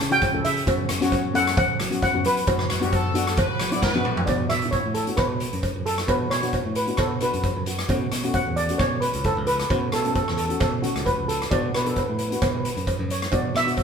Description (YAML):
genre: calypso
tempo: 133 BPM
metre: 4/4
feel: swing 54% on 16ths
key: B minor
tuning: A4 = 440 Hz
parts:
  - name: steel pan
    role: melody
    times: 0.0-13.8 s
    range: F#4 to A5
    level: -25 LUFS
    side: right 1 dB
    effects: none
  - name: modern bright fingered electric bass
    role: bass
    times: 0.0-13.8 s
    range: C#2 to F#3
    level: -29 LUFS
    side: equal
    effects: none
  - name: steel pan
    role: accompaniment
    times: 0.1-13.8 s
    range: A3 to A4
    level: -29 LUFS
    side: left 4 dB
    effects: none
  - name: street-band drum kit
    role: drums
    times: 0.1-13.8 s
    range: hi-hat, kick drum, rim click, snare drum, toms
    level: -26 LUFS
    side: equal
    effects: none
  - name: cowbell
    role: percussion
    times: 0.2-13.8 s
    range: none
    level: -31 LUFS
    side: right 3 dB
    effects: none
  - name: brilliant horn section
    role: second line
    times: 2.7-4.2 s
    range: F#4 to D5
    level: -29 LUFS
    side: left 1 dB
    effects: none
room: moderate large studio reverb, RT60 1.5 s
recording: band playing live in one room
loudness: -21 LUFS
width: side -6 dB against mid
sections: 0.0-4.3 A section; 4.3-13.8 B section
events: drum fill 3.8-4.3; steel pan solo 4.3-13.8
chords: 0.0 C#dim; 0.7 F#sus4; 2.5 Bm/F#; 4.3 Bm; 7.9 F#m; 11.5 Bm